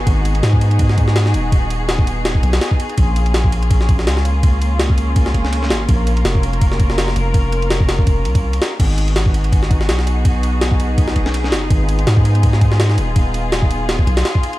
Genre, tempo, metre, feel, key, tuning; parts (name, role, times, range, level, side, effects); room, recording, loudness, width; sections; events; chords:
drum and bass, jungle; 165 BPM; 4/4; swing 55% on 16ths; G# dorian; A4 = 439 Hz
muted studio string section; sustained chords; 0.0-14.6 s; A#3 to A#4; -23 LUFS; left 1 dB
long sustained 808-style bass; bass; 0.0-14.2 s; D#1 to G#2; -17 LUFS; equal
jungle sampler-style drum kit; drums; 0.1-14.6 s; crash cymbal, kick drum, ride cymbal, snare drum; -16 LUFS; equal
digital ambience; vinyl crackle; -13 LUFS; side -17 dB against mid
0.0-8.8 A section; 8.8-14.6 A section
drop 0.0-8.8, 8.8-14.6
0.0 G#m7; 3.0 A#m7; 8.8 G#m7